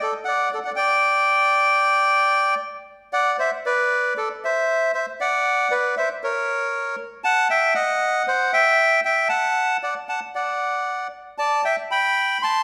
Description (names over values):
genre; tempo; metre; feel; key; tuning
tango; 116 BPM; 4/4; rubato; G major from 3.1 s; A4 = 438 Hz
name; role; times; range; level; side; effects
bandoneon; solo; 0.0-12.6 s; A4 to C6; -21 LUFS; equal; none
room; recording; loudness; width
wet recital hall reverb, RT60 1.4 s; recorded in a church or concert hall; -21 LUFS; mono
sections
0.0-3.1 A section; 3.1-12.6 B section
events
none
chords
0.0 D5; 1.0 N.C.; 3.1 Bm; 4.2 Am (rootless); 5.2 Bm; 6.2 N.C.; 7.2 D#dim; 8.3 C; 9.3 D; 11.4 G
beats
0.00 0.51 | 1.03 1.54 2.06 2.59 | 3.11 3.64 4.16 4.68 | 5.20 5.71 6.23 6.74 | 7.25 7.75 8.27 8.78 | 9.29 9.81 10.32 10.84 | 11.36 11.88 12.40